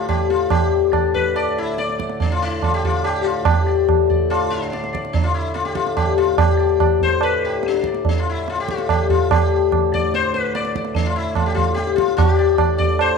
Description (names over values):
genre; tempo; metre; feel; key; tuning
indian classical, Hindustani; 144 BPM; 7/4; straight; D raga bageshri; A4 = 440 Hz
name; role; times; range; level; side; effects
sitar; melody; 0.0-13.2 s; D4 to D5; -19 LUFS; left 9 dB; none
hand-pumped harmonium; drone; 0.0-13.2 s; D2 to A2; -28 LUFS; right 1 dB; none
tabla; percussion; 0.1-13.1 s; none; -20 LUFS; right 5 dB; none
room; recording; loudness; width
moderate echo chamber reverb, RT60 1.4 s; 1960s-style stereo; -16 LUFS; side -5 dB against mid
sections
0.0-3.5 A section; 3.5-13.2 B section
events
speeding up 0.0-13.2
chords
none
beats
0.08 | 0.51 0.93 1.35 1.78 2.20 2.62 3.04 | 3.46 3.88 4.30 4.72 5.14 5.56 5.98 | 6.40 6.81 7.23 7.65 8.06 8.48 8.89 | 9.30 9.72 10.13 10.54 10.95 11.36 11.77 | 12.18 12.59 13.00